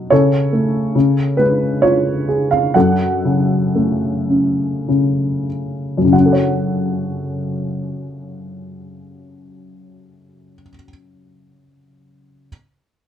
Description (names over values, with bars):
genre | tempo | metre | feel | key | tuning
classical, lyrical solo piano | 46-73 BPM | 3/4 | rubato | F# harmonic minor | A4 = 442 Hz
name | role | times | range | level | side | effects
dark upright piano | solo | 0.0-12.5 s | F#2 to F#5 | -15 LUFS | equal | none
room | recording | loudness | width
moderate studio reverb, RT60 0.6 s | dark, warm production | -14 LUFS | side -9 dB against mid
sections
0.0-6.1 A section; 6.1-10.0 B section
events
slowing down 0.1-6.1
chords
0.1 A/C#; 0.9 C#; 2.7 F#m